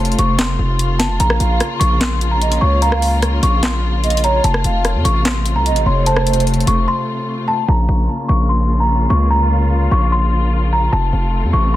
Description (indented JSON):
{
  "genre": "hip hop, trap",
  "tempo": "148 BPM",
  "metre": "4/4",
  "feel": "half-time",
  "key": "Bb harmonic minor",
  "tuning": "A4 = 440 Hz",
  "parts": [
    { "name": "worn celesta", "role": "melody", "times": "0.0-11.8 s", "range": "A5 to Db6", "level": "-20 LUFS", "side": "left 1 dB", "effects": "low-pass filter, tape echo" },
    { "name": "dark symphonic string section", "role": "sustained chords", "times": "0.0-11.8 s", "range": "C3 to F4", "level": "-22 LUFS", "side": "left 2 dB", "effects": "low-pass filter" },
    { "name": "distorted 808-style bass", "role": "bass", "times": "0.0-11.8 s", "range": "F1 to F2", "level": "-16 LUFS", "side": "equal", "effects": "distortion" },
    { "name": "trap drum kit", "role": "drums", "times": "0.0-6.8 s", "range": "handclaps, hi-hat, rim click, snare drum", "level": "-20 LUFS", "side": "equal", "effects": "soft clipping on snare" },
    { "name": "hollow clarinet-like synth lead", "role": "second line", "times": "1.4-6.4 s", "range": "C5 to F5", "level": "-23 LUFS", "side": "right 4 dB", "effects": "chorus, tape echo" }
  ],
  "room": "light reverb, small room ambience",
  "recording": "dense, heavily limited modern master",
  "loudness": "-13 LUFS",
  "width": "side -14 dB against mid",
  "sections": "0.0-7.7 A section; 7.7-11.8 B section",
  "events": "break 6.9-7.7; filter sweep 7.7-11.8",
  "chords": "0.0 F; 1.2 Bbm; 4.4 F; 7.7 Bbm; 10.9 F"
}